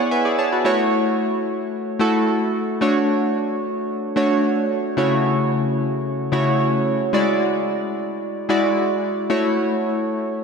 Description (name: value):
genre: pop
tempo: 111 BPM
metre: 4/4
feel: straight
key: unclear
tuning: A4 = 436 Hz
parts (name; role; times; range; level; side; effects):
- chorused retro synth keys; solo; 0.0-10.4 s; C#3 to A5; -18 LUFS; equal; tape echo
room: wet plate reverb, RT60 2.8 s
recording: dreamy mix soaked in reverb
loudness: -18 LUFS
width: side -5 dB against mid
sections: 0.7-9.3 A section; 9.3-10.4 B section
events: synth keys fill 0.0-0.7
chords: 0.0 E7; 0.7 F#m7; 2.8 Dmaj7; 5.0 F#m7/C#; 7.1 E9; 9.3 A6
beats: 0.11 | 0.65 1.19 1.73 2.27 | 2.81 3.35 3.90 4.44 | 4.98 5.52 6.06 6.60 | 7.14 7.68 8.22 8.76 | 9.30 9.84 10.38